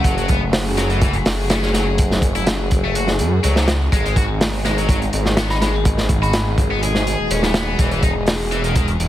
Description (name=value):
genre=breakbeat, breaks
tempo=124 BPM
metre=4/4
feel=straight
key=F# dorian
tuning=A4 = 440 Hz
part: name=glassy synth bell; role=melody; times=0.0-0.1, 5.5-6.4 s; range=F#5 to B5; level=-29 LUFS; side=equal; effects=chorus, tremolo, telephone sound, ping-pong delay
part: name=warm chamber string section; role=sustained chords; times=0.0-9.1 s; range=B2 to G#4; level=-24 LUFS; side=left 2 dB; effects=sidechain pumping
part: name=heavy high-gain guitar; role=riff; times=0.0-8.9 s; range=D#3 to G#4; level=-25 LUFS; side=left 2 dB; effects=distortion, overdrive, ping-pong delay
part: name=phased detuned saw bass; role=bass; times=0.0-9.1 s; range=D#1 to F#2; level=-20 LUFS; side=equal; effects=phaser, tube saturation
part: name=crunchy breakbeat drum kit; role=drums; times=0.0-9.1 s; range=hi-hat, kick drum, snare drum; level=-19 LUFS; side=equal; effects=none
room=light reverb, small room ambience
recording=heavily compressed radio sound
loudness=-15 LUFS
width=side -13 dB against mid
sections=0.0-9.1 A section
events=none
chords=0.0 F#m; 3.9 G#m; 7.8 Emaj7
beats=| 0.05 0.53 1.02 1.50 | 1.99 2.47 2.95 3.44 | 3.92 4.41 4.89 5.37 | 5.86 6.34 6.83 7.31 | 7.79 8.28 8.76